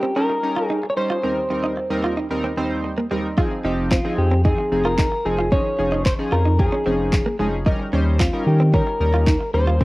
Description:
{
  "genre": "dance-pop",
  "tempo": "112 BPM",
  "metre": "4/4",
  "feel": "straight",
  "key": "unclear",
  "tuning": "A4 = 440 Hz",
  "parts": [
    { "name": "clean electric guitar", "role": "melody", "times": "0.0-9.8 s", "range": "F4 to Db5", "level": "-23 LUFS", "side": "equal", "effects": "spring reverb" },
    { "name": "direct-recorded clean electric guitar", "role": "riff", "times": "0.0-9.8 s", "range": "G3 to F4", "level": "-25 LUFS", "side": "right 2 dB", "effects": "lush chorus, cassette tape" },
    { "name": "chorused retro synth keys", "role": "accompaniment", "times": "0.2-9.8 s", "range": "Eb2 to C5", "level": "-24 LUFS", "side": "equal", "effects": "cassette tape" },
    { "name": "deep house drum kit", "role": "drums", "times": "3.4-9.8 s", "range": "handclaps, kick drum", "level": "-20 LUFS", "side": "equal", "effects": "cassette tape" },
    { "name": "round analog bass", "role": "bass", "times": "3.6-9.8 s", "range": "F1 to Eb3", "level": "-20 LUFS", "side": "equal", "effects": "sidechain pumping" }
  ],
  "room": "digital ambience",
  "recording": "home recording on cassette",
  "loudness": "-18 LUFS",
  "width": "side -20 dB against mid",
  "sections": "0.0-9.8 A section",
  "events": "none",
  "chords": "0.0 Eb7; 1.2 Cm7/Eb; 3.4 Fm7; 5.5 Dbadd9/F; 7.7 Eb7"
}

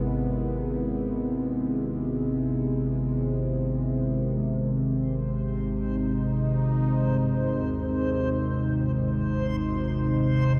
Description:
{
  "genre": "dark ambient drone",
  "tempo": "free time",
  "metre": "none",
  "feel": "none",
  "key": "unclear",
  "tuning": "A4 = 440 Hz",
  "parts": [
    { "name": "sweeping resonant pad", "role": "sustained chords", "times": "0.0-10.6 s", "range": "C3 to E4", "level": "-32 LUFS", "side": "equal", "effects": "chorus" },
    { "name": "gamelan-type bossed gongs", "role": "arpeggios", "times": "0.0-10.6 s", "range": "Eb2 to G#4", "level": "-38 LUFS", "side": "equal", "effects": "none" },
    { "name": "overtone-sweeping drone", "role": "drone", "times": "0.0-10.6 s", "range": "Ab1 to C3", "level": "-28 LUFS", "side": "equal", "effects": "chorus, built-in reverb, phaser" },
    { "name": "backwards swelling texture", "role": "texture", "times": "5.4-10.6 s", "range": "C5", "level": "-37 LUFS", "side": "equal", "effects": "built-in reverb" }
  ],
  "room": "wet cathedral reverb, RT60 5.2 s",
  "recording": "none",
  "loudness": "-27 LUFS",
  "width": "mono",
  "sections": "0.0-4.4 A section; 4.4-10.6 B section",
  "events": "none",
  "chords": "0.0 E; 4.4 Ab"
}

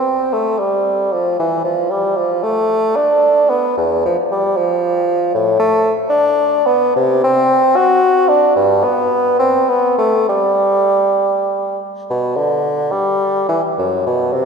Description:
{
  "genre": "classical, baroque-style fantasia for unaccompanied bassoon",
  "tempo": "65-79 BPM (dotted quarters)",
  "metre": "6/8",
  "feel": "rubato",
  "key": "G major from 5.4 s",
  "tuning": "A4 = 440 Hz",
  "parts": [
    { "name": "warm bassoon", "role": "solo", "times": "0.0-14.5 s", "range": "E2 to F#4", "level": "-13 LUFS", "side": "equal", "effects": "none" }
  ],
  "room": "wet church reverb, RT60 3.2 s",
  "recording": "minimal, uncompressed stereo recording",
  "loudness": "-13 LUFS",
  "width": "side -5 dB against mid",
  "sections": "0.0-12.1 A section; 12.1-14.5 B section",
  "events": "none",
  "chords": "none"
}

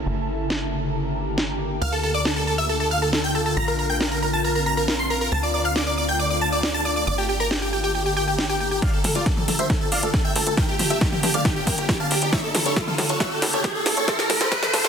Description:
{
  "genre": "uplifting trance",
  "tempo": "137 BPM",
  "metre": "4/4",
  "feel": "straight",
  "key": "D minor",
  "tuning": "A4 = 440 Hz",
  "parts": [
    { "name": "tight sequencer bass", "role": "bass", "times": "0.0-14.9 s", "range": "D1 to A2", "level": "-29 LUFS", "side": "equal", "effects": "sidechain pumping, high-pass filter" },
    { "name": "house drum kit", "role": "drums", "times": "0.5-14.9 s", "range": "hi-hat, snare drum, toms", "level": "-26 LUFS", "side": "equal", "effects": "overdrive, low-pass filter on snare, sidechain pumping on hats, low-pass filter on hats, sidechain pumping on toms, low-pass filter on toms, low-pass filter on room" },
    { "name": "big supersaw lead", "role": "melody", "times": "1.8-14.9 s", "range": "F4 to C6", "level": "-24 LUFS", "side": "equal", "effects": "sidechain pumping, dub echo" },
    { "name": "analog pluck", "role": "second line", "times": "1.8-8.8 s", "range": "G5 to C7", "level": "-30 LUFS", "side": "left 1 dB", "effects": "chorus, sidechain pumping, dub echo" },
    { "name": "electronic kick drum", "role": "drums", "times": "8.8-14.6 s", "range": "none", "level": "-24 LUFS", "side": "equal", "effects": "overdrive" },
    { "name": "riser", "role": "sound effects", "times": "11.2-14.9 s", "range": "none", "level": "-28 LUFS", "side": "equal", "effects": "none" }
  ],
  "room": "digital ambience",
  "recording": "dense, heavily limited modern master, high-pass filter",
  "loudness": "-20 LUFS",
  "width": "side -7 dB against mid",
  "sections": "0.0-8.8 A section; 8.8-14.9 B section",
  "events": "build-up 8.8-14.9; drum fill 8.8-14.9; filter sweep 8.8-14.9; riser 11.2-14.9",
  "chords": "0.1 Gm; 1.8 Dm; 3.6 Bbadd9; 5.3 Dm; 7.1 Gm; 8.8 Dm; 10.6 Gm; 12.3 A; 14.1 Gm"
}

